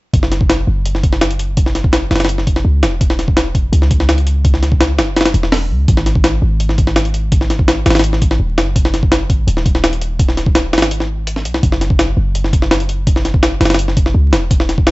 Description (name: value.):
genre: drum and bass, jungle.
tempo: 167 BPM.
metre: 4/4.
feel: straight.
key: unclear.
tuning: A4 = 442 Hz.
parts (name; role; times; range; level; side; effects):
warm 808-style bass; bass; 0.1-14.9 s; D#1 to C#2; -16 LUFS; equal; none.
jungle sampler-style drum kit; drums; 0.1-14.9 s; hi-hat, kick drum, snare drum; -13 LUFS; equal; studio reverb.
room: little or no reverb.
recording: vinyl crackle, nothing above 7.9 kHz.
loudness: -12 LUFS.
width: side -21 dB against mid.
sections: 0.1-14.9 A section.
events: break 10.9-11.6.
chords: none.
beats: | 0.13 0.49 0.85 1.21 | 1.57 1.93 2.29 2.65 | 3.01 3.37 3.73 4.09 | 4.45 4.80 5.16 5.52 | 5.88 6.24 6.60 6.96 | 7.32 7.68 8.04 8.40 | 8.76 9.12 9.48 9.84 | 10.19 10.55 10.91 11.27 | 11.63 11.99 12.35 12.71 | 13.07 13.43 13.79 14.15 | 14.51 14.87.